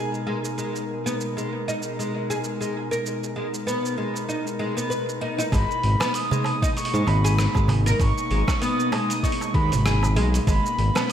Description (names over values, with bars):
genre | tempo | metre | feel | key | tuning
organic downtempo | 97 BPM | 4/4 | swing 56% on 16ths | G# minor | A4 = 440 Hz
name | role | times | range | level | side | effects
airy breathy pad | sustained chords | 0.0-11.1 s | B2 to A#4 | -30 LUFS | left 1 dB | chorus, sidechain pumping
oud | arpeggios | 0.0-11.0 s | G#3 to B4 | -28 LUFS | equal | low-pass filter, tape echo
dusty soul sampler-style drum kit | drums | 0.1-11.1 s | hi-hat, rim click, shaker | -31 LUFS | right 1 dB | overdrive, small room ambience
breathy flute-like synth lead | melody | 5.5-11.1 s | B5 to D#6 | -27 LUFS | right 1 dB | wide subtle chorus, tape echo
smooth synth bass | bass | 5.5-10.9 s | G#1 to G#2 | -21 LUFS | equal | tube saturation, sidechain pumping
electronic kick drum | drums | 5.5-10.6 s | none | -24 LUFS | equal | overdrive, small room ambience
darbuka | percussion | 5.5-11.1 s | none | -29 LUFS | right 3 dB | none
room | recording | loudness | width
moderate lush hall reverb, RT60 2.3 s | dreamy mix soaked in reverb | -21 LUFS | side -9 dB against mid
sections
0.0-5.5 A section; 5.5-11.1 B section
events
none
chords
0.0 G#madd9